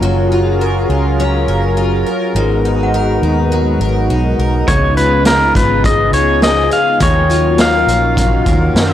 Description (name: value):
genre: dream pop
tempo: 103 BPM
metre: 4/4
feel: straight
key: F# major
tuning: A4 = 441 Hz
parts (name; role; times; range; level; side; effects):
- lush unison pad; sustained chords; 0.0-8.9 s; C#3 to A#4; -18 LUFS; equal; chorus
- picked twelve-string acoustic guitar; arpeggios; 0.0-8.9 s; G#2 to A#4; -18 LUFS; left 3 dB; wide subtle chorus, analog delay
- vintage muted fingered electric bass; bass; 0.0-8.9 s; F#1 to F#2; -16 LUFS; equal; none
- synth chime; texture; 2.8-7.3 s; F#5 to G#5; -27 LUFS; right 3 dB; ensemble chorus, tremolo, analog delay
- pedal steel guitar; melody; 4.7-8.9 s; A#4 to E#5; -14 LUFS; left 1 dB; analog delay
- raw garage drum kit; drums; 4.7-8.9 s; hi-hat, kick drum, snare drum; -16 LUFS; equal; none
room: small room ambience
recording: dry, gritty hardware recording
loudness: -11 LUFS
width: side -11 dB against mid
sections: 0.0-8.9 A section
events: none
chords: 0.0 F#maj7; 2.3 G#m9; 4.7 C#7; 7.0 D#m9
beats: | 0.02 0.60 1.18 1.77 | 2.35 2.93 3.51 4.10 | 4.68 5.26 5.84 6.43 | 7.01 7.59 8.17 8.76